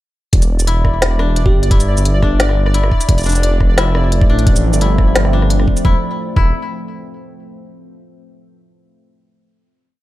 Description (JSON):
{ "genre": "half-time drum and bass", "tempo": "174 BPM", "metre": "4/4", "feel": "swing 54% on 16ths, half-time", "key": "E phrygian", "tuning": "A4 = 440 Hz", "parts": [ { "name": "dark detuned saw bass", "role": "bass", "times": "0.3-6.5 s", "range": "E1 to A1", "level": "-14 LUFS", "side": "equal", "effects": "none" }, { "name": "electronic kick drum", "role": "drums", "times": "0.3-6.4 s", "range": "none", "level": "-13 LUFS", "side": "equal", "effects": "studio ambience" }, { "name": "organic electronic drum kit", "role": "drums", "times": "0.3-5.8 s", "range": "hi-hat, rim click, shaker, snare drum", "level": "-20 LUFS", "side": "equal", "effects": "studio ambience" }, { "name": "pulsing gated texture", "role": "texture", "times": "0.3-5.9 s", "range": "D5", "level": "-25 LUFS", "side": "left 1 dB", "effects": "chorus, built-in reverb" }, { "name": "koto", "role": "arpeggios", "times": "0.7-6.5 s", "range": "D4 to E4", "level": "-23 LUFS", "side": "left 4 dB", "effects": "digital delay" }, { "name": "bell-like FM electric piano", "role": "melody", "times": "1.5-1.8 s", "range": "G4", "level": "-26 LUFS", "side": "right 3 dB", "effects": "chorus, dub echo" }, { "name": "deep dark ambient pad", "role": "sustained chords", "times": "4.0-6.0 s", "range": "F3 to C4", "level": "-23 LUFS", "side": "equal", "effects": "chorus, built-in reverb, vintage 12-bit sampler grit, sidechain pumping" } ], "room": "little or no reverb", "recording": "none", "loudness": "-12 LUFS", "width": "side -16 dB against mid", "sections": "0.3-5.8 drop; 5.8-7.2 final chord", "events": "drop 0.3-5.8", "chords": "0.3 Em7; 3.1 F; 5.8 Em" }